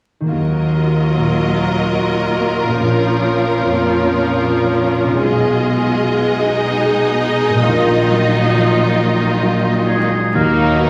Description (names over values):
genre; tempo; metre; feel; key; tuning
cinematic, emotional film score for orchestra; 42-50 BPM (dotted quarters); 6/8; rubato; Eb minor; A4 = 441 Hz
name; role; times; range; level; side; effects
concert harp; arpeggios; 0.2-10.9 s; Bb2 to F5; -22 LUFS; equal; none
clear studio violin section; second line; 0.3-10.9 s; Bb3 to Eb5; -22 LUFS; equal; none
clear studio viola section; accompaniment; 0.3-10.9 s; Eb3 to F4; -22 LUFS; equal; none
dark grand piano; accompaniment; 0.3-10.9 s; Bb1 to F5; -22 LUFS; equal; none
rich studio cello section; bass; 0.3-10.9 s; Eb2 to Eb3; -26 LUFS; equal; none
clear oboe; second line; 9.9-10.9 s; Ab4 to Bb4; -22 LUFS; equal; none
warm clarinet; second line; 9.9-10.9 s; Ab3 to Bb3; -24 LUFS; equal; none
rich studio violin section; melody; 10.3-10.9 s; Eb4; -24 LUFS; equal; none
mellow French horn section; sustained chords; 10.3-10.9 s; Gb3 to Eb4; -23 LUFS; equal; none
warm studio double bass section; bass; 10.3-10.9 s; Eb2; -27 LUFS; equal; none
room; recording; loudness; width
wet scoring stage reverb, RT60 1.8 s; vinyl crackle; -16 LUFS; mono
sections
0.3-10.3 A section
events
none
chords
0.3 Ebmadd9; 2.8 Bbm; 5.2 Abm/Cb; 7.7 Ebmadd9/Bb; 10.3 Ebmadd9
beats
| 0.32 1.57 | 2.80 4.01 | 5.23 6.44 | 7.67 8.96 | 10.34